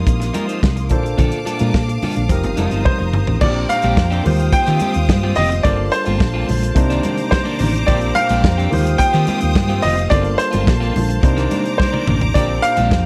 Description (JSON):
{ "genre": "disco", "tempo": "108 BPM", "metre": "4/4", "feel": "straight", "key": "unclear", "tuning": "A4 = 440 Hz", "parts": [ { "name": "barky tine electric piano", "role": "accompaniment", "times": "0.0-13.1 s", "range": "Bb2 to C5", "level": "-26 LUFS", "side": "equal", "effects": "overdrive" }, { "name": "clear studio string section", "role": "sustained chords", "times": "0.0-13.1 s", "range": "Bb3 to Eb6", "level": "-30 LUFS", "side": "equal", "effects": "none" }, { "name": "hollow-body short-scale fingered electric bass", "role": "bass", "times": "0.0-13.1 s", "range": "F1 to Eb3", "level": "-21 LUFS", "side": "equal", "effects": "none" }, { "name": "electric guitar at the edge of break-up", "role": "accompaniment", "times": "0.1-13.0 s", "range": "Eb3 to C5", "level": "-29 LUFS", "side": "equal", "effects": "spring reverb" }, { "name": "warm soul drum kit", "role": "drums", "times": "0.1-13.0 s", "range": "crash cymbal, hi-hat, kick drum, snare drum, toms", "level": "-21 LUFS", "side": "equal", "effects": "none" }, { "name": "congas", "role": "percussion", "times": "0.1-13.0 s", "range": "none", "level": "-28 LUFS", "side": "equal", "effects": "none" }, { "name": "clear baby grand piano", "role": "melody", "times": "2.9-13.1 s", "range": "C5 to G5", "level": "-23 LUFS", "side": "equal", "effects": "slapback echo" } ], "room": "small room ambience", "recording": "none", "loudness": "-17 LUFS", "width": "mono", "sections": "0.0-3.4 A section; 3.4-13.1 B section", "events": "drum fill 2.9-3.4, 11.8-12.4", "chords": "0.0 F7sus4; 0.9 Bbmaj7; 2.3 F7sus4; 3.4 Bb69; 4.3 Eb69; 5.6 Gm11; 6.8 Cm9; 7.9 Bb69; 8.7 Eb69; 10.1 Gm11; 11.2 Cm9; 12.4 Bb69" }